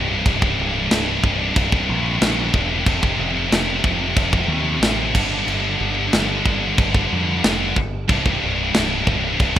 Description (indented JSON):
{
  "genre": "heavy metal",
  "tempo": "92 BPM",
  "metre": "4/4",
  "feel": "straight",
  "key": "unclear",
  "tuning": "A4 = 440 Hz",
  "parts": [
    { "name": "scooped high-gain guitar", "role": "riff", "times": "0.0-9.6 s", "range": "C2 to D3", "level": "-20 LUFS", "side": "left 1 dB", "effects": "distortion" },
    { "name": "growling picked electric bass", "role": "bass", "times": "0.0-9.6 s", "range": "C1 to F2", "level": "-25 LUFS", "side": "equal", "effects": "overdrive" },
    { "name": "tight metal drum kit", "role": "drums", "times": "0.3-9.6 s", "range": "crash cymbal, kick drum, snare drum", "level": "-21 LUFS", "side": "equal", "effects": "none" }
  ],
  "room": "small room reverb",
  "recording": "rough home demo mix",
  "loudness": "-17 LUFS",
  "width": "side -11 dB against mid",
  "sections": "0.0-9.6 A section",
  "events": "none",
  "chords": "0.0 C5; 2.9 F; 5.1 G5; 8.1 C5"
}